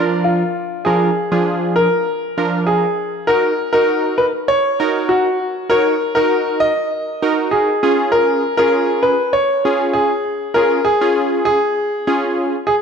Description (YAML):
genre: pop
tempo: 99 BPM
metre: 4/4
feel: straight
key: unclear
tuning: A4 = 440 Hz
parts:
  - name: clear baby grand piano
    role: melody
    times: 0.0-12.7 s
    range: E#4 to D#5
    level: -16 LUFS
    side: left 1 dB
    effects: ping-pong delay
  - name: warm analog keys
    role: accompaniment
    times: 0.0-12.6 s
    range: E#3 to C#5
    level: -19 LUFS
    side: right 2 dB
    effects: chorus
room: moderate lush hall reverb, RT60 2.2 s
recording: dark, warm production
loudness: -14 LUFS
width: side -6 dB against mid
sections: 0.0-12.8 A section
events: none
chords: 0.0 A#/E#; 3.3 D#m; 7.8 C#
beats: 0.26 | 0.86 1.47 2.07 2.68 | 3.29 3.89 4.50 5.10 | 5.71 6.32 6.92 7.53 | 8.13 8.74 9.35 9.95 | 10.56 11.16 11.77 12.38